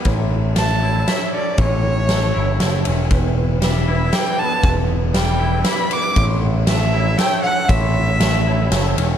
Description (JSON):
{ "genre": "post-rock", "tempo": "118 BPM", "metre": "3/4", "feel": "straight", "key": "unclear", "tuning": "A4 = 440 Hz", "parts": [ { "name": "twangy electric guitar", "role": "arpeggios", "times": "0.0-9.2 s", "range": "E2 to E4", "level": "-27 LUFS", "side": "left 2 dB", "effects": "ensemble chorus, tape echo" }, { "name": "vibraphone with medium mallets", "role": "arpeggios", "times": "0.0-9.2 s", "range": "B4 to C#5", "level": "-29 LUFS", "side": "right 6 dB", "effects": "tape echo" }, { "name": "huge arena drum kit", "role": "drums", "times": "0.0-9.1 s", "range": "kick drum, ride cymbal, snare drum", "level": "-20 LUFS", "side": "equal", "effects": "none" }, { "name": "growling picked electric bass", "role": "bass", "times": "0.1-9.2 s", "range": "E1 to A1", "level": "-18 LUFS", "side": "equal", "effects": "overdrive" }, { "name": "rich violin", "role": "melody", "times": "0.6-9.0 s", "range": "C#5 to D6", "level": "-22 LUFS", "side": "equal", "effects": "tape echo" } ], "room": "little or no reverb", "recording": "dark, warm production", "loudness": "-15 LUFS", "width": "side -9 dB against mid", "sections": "0.0-9.2 A section", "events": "none", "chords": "0.1 A; 3.1 Em; 6.2 A" }